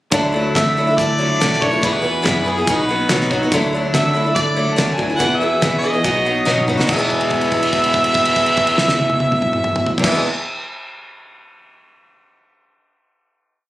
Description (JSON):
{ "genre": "folk rock and heartland rock", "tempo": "142 BPM", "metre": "4/4", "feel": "straight", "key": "E mixolydian", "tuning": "A4 = 440 Hz", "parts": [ { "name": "picked steel-string acoustic guitar", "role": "accompaniment", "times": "0.1-10.3 s", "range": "E2 to G#4", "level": "-20 LUFS", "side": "left 1 dB", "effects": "none" }, { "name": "electric guitar through a small old amp", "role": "riff", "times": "0.1-10.2 s", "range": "E2 to G#4", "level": "-24 LUFS", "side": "right 2 dB", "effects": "phaser" }, { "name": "picked electric bass", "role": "bass", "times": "0.1-10.2 s", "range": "E1 to E3", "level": "-26 LUFS", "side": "right 1 dB", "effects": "none" }, { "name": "damped 70s drum kit", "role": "drums", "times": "0.1-10.1 s", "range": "crash cymbal, hi-hat, kick drum, snare drum, toms", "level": "-20 LUFS", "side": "equal", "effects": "none" }, { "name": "warm harmonica", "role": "melody", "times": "0.5-10.2 s", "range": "G#4 to A5", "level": "-19 LUFS", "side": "equal", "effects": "digital delay" } ], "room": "light reverb, studio ambience", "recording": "recorded on a phone in the room, studio reverb", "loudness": "-14 LUFS", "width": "side -15 dB against mid", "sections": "0.1-6.9 pre-chorus; 6.9-10.3 final chord", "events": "drum fill 6.5-6.9; held note 6.9-10.0", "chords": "0.1 Dadd9; 1.8 E; 2.7 B; 3.5 Dadd9; 5.2 E; 6.1 B; 6.9 E" }